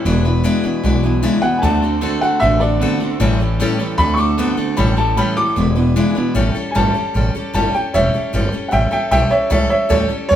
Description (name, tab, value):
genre	rockabilly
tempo	152 BPM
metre	4/4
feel	straight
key	A mixolydian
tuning	A4 = 441 Hz
part	dark upright piano	melody	0.0-10.4 s	E4 to D6	-18 LUFS	equal	none
part	picked steel-string acoustic guitar	accompaniment	0.0-10.4 s	A2 to B4	-20 LUFS	left 2 dB	none
part	electric guitar at the edge of break-up	riff	0.0-6.3 s	E2 to B3	-20 LUFS	right 3 dB	none
part	upright bass	bass	0.1-10.4 s	E1 to E2	-19 LUFS	equal	none
room	moderate large studio reverb, RT60 0.9 s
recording	band playing live in one room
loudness	-14 LUFS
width	side -10 dB against mid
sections	0.0-6.4 A section; 6.4-10.4 B section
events	upright piano solo 0.0-6.4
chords	0.1 E7; 1.6 D7; 3.2 A7; 4.0 D7; 4.8 A7; 5.6 E7; 6.4 A7